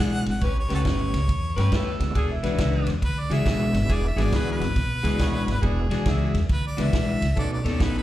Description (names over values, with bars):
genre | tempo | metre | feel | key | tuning
electric blues shuffle | 138 BPM | 4/4 | swing 65% on 8ths | E mixolydian | A4 = 438 Hz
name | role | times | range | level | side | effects
clear harmonica | melody | 0.0-8.0 s | F#4 to F#5 | -31 LUFS | equal | slapback echo
electric guitar at the edge of break-up | riff | 0.0-8.0 s | E3 to C#5 | -28 LUFS | left 3 dB | wide subtle chorus
warm saxophone section | stabs | 0.0-8.0 s | C#4 to B4 | -32 LUFS | left 4 dB | slapback echo
upright bass | bass | 0.0-8.0 s | E1 to G2 | -25 LUFS | equal | none
vintage drum kit | drums | 0.3-7.9 s | kick drum, ride cymbal, snare drum | -27 LUFS | equal | none
mellow harmonica | second line | 1.6-6.4 s | E4 to C#5 | -35 LUFS | right 4 dB | overdrive, slapback echo
tonewheel organ | accompaniment | 2.0-7.6 s | G#3 to F#4 | -33 LUFS | right 6 dB | slow rotary speaker, overdrive, chorus vibrato, slapback echo
room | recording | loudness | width
little or no reverb | live gig heard through the venue's PA, club reverb | -21 LUFS | side -14 dB against mid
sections
0.0-8.0 A section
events
none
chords
0.4 A9; 2.2 E9; 7.4 B9